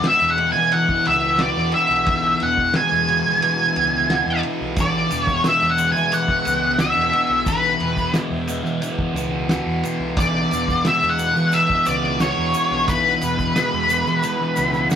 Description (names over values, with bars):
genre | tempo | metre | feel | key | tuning
psychedelic rock | 89 BPM | 4/4 | straight | E mixolydian | A4 = 440 Hz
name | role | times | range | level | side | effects
octave-fuzz lead guitar | melody | 0.0-14.9 s | B4 to G#5 | -18 LUFS | equal | distortion
fuzz guitar | riff | 0.0-15.0 s | E2 to F#4 | -23 LUFS | equal | distortion, phaser
cloth-damped thuddy drum kit | drums | 0.0-15.0 s | kick drum, ride cymbal, snare drum | -27 LUFS | equal | none
fuzz fingered electric bass | bass | 0.2-15.0 s | B1 to E3 | -28 LUFS | right 1 dB | overdrive
tube shaker | percussion | 4.8-15.0 s | none | -39 LUFS | right 5 dB | none
room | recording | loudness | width
wet studio reverb, RT60 0.6 s | rough rehearsal-room recording | -17 LUFS | side -8 dB against mid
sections
0.0-15.0 A section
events
none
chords
0.0 Eadd9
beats
0.05 0.72 1.40 | 2.07 2.75 3.42 4.10 | 4.78 5.45 6.13 6.80 | 7.48 8.15 8.83 9.50 | 10.18 10.86 11.53 12.21 | 12.88 13.56 14.23 14.91